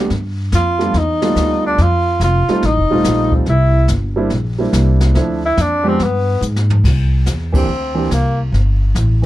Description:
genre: jazz, small-group swing and bop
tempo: 142 BPM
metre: 4/4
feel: swing 66% on 8ths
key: C mixolydian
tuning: A4 = 440 Hz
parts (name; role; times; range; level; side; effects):
- warm grand piano; accompaniment; 0.0-9.3 s; E3 to D5; -18 LUFS; right 2 dB; none
- upright bass; bass; 0.1-9.3 s; Eb1 to Ab2; -15 LUFS; equal; none
- jazz brush drum kit; drums; 0.1-9.3 s; brushed snare drum, crash cymbal, hi-hat, kick drum, ride cymbal, snare drum, toms; -22 LUFS; equal; none
- warm tenor saxophone; melody; 0.5-8.4 s; Bb3 to F4; -17 LUFS; equal; none
room: light reverb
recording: dark, warm production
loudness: -13 LUFS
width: side -15 dB against mid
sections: 0.0-6.8 A section; 6.8-9.3 B section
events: tenor saxophone solo 0.0-6.8; drum fill 6.4-6.8; band accent 7.5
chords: 0.0 G7; 1.8 F7; 3.5 C7; 5.2 Dm7; 6.0 G; 6.8 C

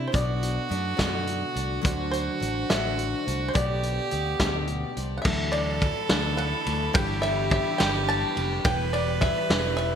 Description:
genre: indie folk with a building arrangement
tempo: 71 BPM (dotted quarters)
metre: 6/8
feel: straight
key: G major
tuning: A4 = 441 Hz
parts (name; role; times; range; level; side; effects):
- bluegrass banjo; melody; 0.0-10.0 s; C5 to A5; -30 LUFS; equal; ping-pong delay
- warm fiddle; second line; 0.0-10.0 s; E4 to B4; -30 LUFS; right 5 dB; ping-pong delay
- fingerpicked old ladder-braced acoustic guitar; accompaniment; 0.0-5.2 s; D2 to G4; -35 LUFS; left 2 dB; lush chorus
- picked steel-string acoustic guitar; accompaniment; 0.0-10.0 s; B2 to D5; -34 LUFS; left 5 dB; lush chorus
- fingered electric bass; bass; 0.0-9.9 s; E1 to F#2; -30 LUFS; equal; none
- loose indie drum kit; drums; 0.1-9.9 s; crash cymbal, hi-hat, kick drum, ride cymbal, snare drum; -27 LUFS; equal; gated reverb
- muted chamber string section; sustained chords; 5.3-10.0 s; D3 to G4; -37 LUFS; left 2 dB; none
room: moderate plate reverb, RT60 2.0 s, studio ambience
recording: bright 1980s-style digital production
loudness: -23 LUFS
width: side -8 dB against mid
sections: 0.0-5.2 A section; 5.2-10.0 B section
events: none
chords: 0.1 Bm7; 1.8 D7; 3.5 Gadd9/B; 5.2 Dadd9; 6.9 G6; 8.6 Em

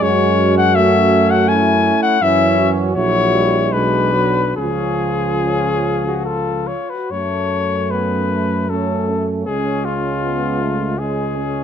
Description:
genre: classical, hymn-like piece for brass band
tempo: 69-83 BPM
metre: 3/4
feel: rubato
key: F# minor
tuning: A4 = 442 Hz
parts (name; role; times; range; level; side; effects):
- mellow cornet; melody; 0.0-11.6 s; E#4 to G#5; -18 LUFS; left 6 dB; none
- mellow French horn section; second line; 0.0-11.6 s; C#4 to F#4; -23 LUFS; right 2 dB; none
- clear trombone section; accompaniment; 0.0-11.6 s; G#3 to F#4; -25 LUFS; right 3 dB; none
- warm euphonium; accompaniment; 0.0-11.6 s; E3 to A3; -22 LUFS; right 6 dB; none
- mellow tuba; bass; 0.0-11.6 s; A#1 to F#2; -21 LUFS; right 1 dB; none
room: moderate stone room reverb, RT60 1.2 s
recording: close, detailed microphones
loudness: -14 LUFS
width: side -8 dB against mid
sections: 0.0-7.1 A section; 7.1-11.6 B section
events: none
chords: 0.0 F#m; 2.2 F#7; 3.7 Bm; 4.6 C#; 7.1 F#m; 9.5 C#

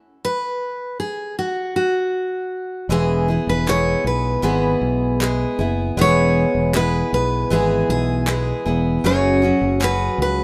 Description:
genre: acoustic pop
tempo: 78 BPM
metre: 4/4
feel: straight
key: E major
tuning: A4 = 440 Hz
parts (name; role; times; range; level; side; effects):
- picked steel-string acoustic guitar; melody; 0.2-10.4 s; F#4 to C#5; -24 LUFS; equal; none
- picked steel-string acoustic guitar; accompaniment; 2.9-10.4 s; F#2 to G#4; -22 LUFS; equal; none
- fingered electric bass; bass; 2.9-10.4 s; E1 to C#2; -24 LUFS; equal; none
- group handclap; percussion; 3.7-10.0 s; none; -29 LUFS; equal; none
room: light reverb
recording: none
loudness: -20 LUFS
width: mono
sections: 0.0-2.9 A section; 2.9-10.4 B section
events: stop 0.0-2.9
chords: 0.0 N.C.; 2.9 E; 9.0 F#sus2

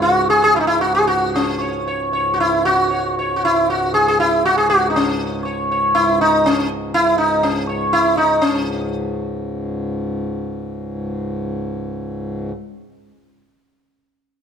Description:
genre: indian classical, Hindustani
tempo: 112-130 BPM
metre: 7/4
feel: straight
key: C# raga bhimpalasi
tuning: A4 = 438 Hz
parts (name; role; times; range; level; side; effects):
- sitar; melody; 0.0-13.1 s; C#4 to C#5; -15 LUFS; equal; none
- hand-pumped harmonium; drone; 0.0-12.5 s; C#2 to G#2; -25 LUFS; left 1 dB; none
room: moderate recital hall reverb, RT60 1.4 s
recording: minimal, uncompressed stereo recording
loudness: -16 LUFS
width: side -7 dB against mid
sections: 0.0-8.4 A section; 8.4-11.7 B section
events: speeding up 0.0-11.7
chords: none

